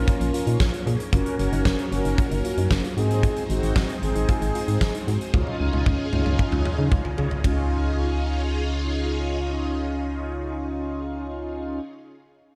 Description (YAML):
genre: synth-pop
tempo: 114 BPM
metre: 4/4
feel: straight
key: Db major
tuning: A4 = 444 Hz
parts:
  - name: mellow synth brass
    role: accompaniment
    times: 0.0-11.8 s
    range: C4 to Bb4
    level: -31 LUFS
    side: equal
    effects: chorus
  - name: phased string machine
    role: sustained chords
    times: 0.0-11.8 s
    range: Db3 to Ab4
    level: -35 LUFS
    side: equal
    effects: ensemble chorus, phaser
  - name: soft round pluck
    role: arpeggios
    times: 0.0-11.9 s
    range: C4 to Db5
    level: -37 LUFS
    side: equal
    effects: none
  - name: solid FM bass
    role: bass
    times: 0.0-11.8 s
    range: Gb1 to Db3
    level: -28 LUFS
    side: equal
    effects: none
  - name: huge arena drum kit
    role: drums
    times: 0.1-7.6 s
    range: hi-hat, kick drum, ride cymbal, snare drum, toms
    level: -27 LUFS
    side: equal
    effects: none
room: light reverb, studio ambience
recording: none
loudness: -24 LUFS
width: mono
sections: 0.0-7.4 A section; 7.4-11.7 B section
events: drum fill 5.3-7.4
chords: 0.0 Bbm; 1.1 Gb; 3.0 Ab; 5.3 Dbadd9